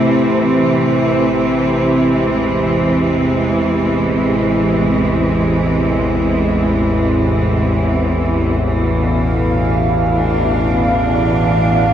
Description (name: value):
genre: dark ambient drone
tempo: free time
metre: none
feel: none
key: A harmonic minor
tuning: A4 = 440 Hz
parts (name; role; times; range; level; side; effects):
- bright symphonic cello section; sustained chords; 0.0-11.9 s; B2 to D4; -15 LUFS; right 1 dB; none
- analog drone; drone; 0.0-11.9 s; A1 to E2; -18 LUFS; equal; chorus
- bubbling stepped-filter texture; texture; 9.0-11.9 s; F5; -19 LUFS; right 3 dB; chorus, built-in reverb
room: wet plate reverb, RT60 2.9 s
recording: dreamy mix soaked in reverb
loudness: -13 LUFS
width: side -10 dB against mid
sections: 0.0-11.9 A section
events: fade-in on synth drone 0.0-11.9; fade-out on cello section 0.0-11.9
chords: 0.0 Am; 8.7 F/A